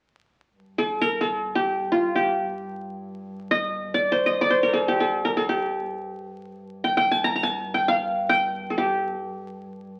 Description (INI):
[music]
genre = turkish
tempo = free time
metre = none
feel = none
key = G makam ussak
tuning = A4 = 435 Hz
[part]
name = dark double bass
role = drone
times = 0.6-10.0 s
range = G2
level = -43 LUFS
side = equal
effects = none
[part]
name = qanun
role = melody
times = 0.8-10.0 s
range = F4 to Bb5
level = -24 LUFS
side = equal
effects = none
[sound]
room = wet large studio reverb, RT60 1.2 s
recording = very old 78 rpm record, vinyl crackle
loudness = -24 LUFS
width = mono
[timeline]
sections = 0.6-10.0 A section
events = none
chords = none